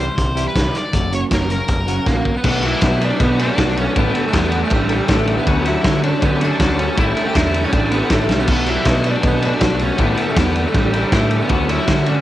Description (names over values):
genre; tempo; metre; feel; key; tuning
indie rock; 159 BPM; 4/4; straight; B minor; A4 = 439 Hz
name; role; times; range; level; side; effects
octave-fuzz lead guitar; melody; 0.0-12.1 s; G3 to D5; -22 LUFS; equal; distortion, cassette tape, tape echo
raw garage guitar; riff; 0.0-12.2 s; A2 to G4; -25 LUFS; right 8 dB; overdrive, ensemble chorus, cassette tape, tape echo
twelve-string electric guitar; riff; 0.0-12.2 s; F#2 to F#4; -25 LUFS; left 11 dB; cassette tape
growling picked electric bass; bass; 0.0-12.2 s; F#1 to D3; -21 LUFS; equal; overdrive
loose indie drum kit; drums; 0.2-12.2 s; crash cymbal, hi-hat, kick drum, ride cymbal, snare drum; -18 LUFS; equal; cassette tape
glockenspiel with brass mallets; second line; 2.1-12.2 s; E6 to E7; -32 LUFS; right 11 dB; cassette tape
bright tonewheel organ; sustained chords; 2.5-12.2 s; A4 to D6; -31 LUFS; equal; none
room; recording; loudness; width
small room ambience; home recording on cassette; -14 LUFS; side -14 dB against mid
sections
0.0-2.5 A section; 2.5-12.2 B section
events
drum fill 2.1-2.5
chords
0.0 C; 0.9 F#; 2.5 Bm7; 4.0 A7sus4; 5.5 Dmaj7; 7.0 A7sus4; 8.5 Bm7; 10.0 A7sus4; 11.5 Dmaj7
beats
0.18 0.56 | 0.94 1.32 1.70 2.07 | 2.45 2.83 3.21 3.58 | 3.96 4.34 4.71 5.09 | 5.47 5.84 6.22 6.60 | 6.97 7.35 7.73 8.10 | 8.48 8.86 9.23 9.61 | 9.99 10.37 10.74 11.12 | 11.50 11.88